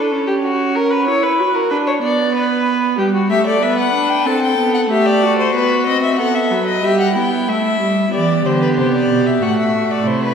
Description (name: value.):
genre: classical, baroque-style fugue for string quartet.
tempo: 94 BPM.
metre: 4/4.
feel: straight.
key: E minor.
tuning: A4 = 440 Hz.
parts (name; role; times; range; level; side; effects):
dark violin; second line; 0.0-10.3 s; E4 to D5; -18 LUFS; left 1 dB; none.
warm viola; accompaniment; 0.0-10.3 s; F#3 to F#4; -18 LUFS; right 3 dB; none.
warm violin; melody; 3.3-10.3 s; B4 to A5; -18 LUFS; left 4 dB; none.
rich cello; bass; 8.1-10.3 s; A2 to E3; -19 LUFS; right 2 dB; none.
room: wet scoring stage reverb, RT60 2.1 s.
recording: heard from further back in the room.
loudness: -14 LUFS.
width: side -7 dB against mid.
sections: 0.0-8.1 A section; 8.1-10.3 B section.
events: none.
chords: 0.4 F#/C#; 1.7 Bm; 3.0 Em/G; 4.3 Am; 5.5 B; 6.8 Em/G; 8.1 Cmaj7; 9.4 F#dim/A.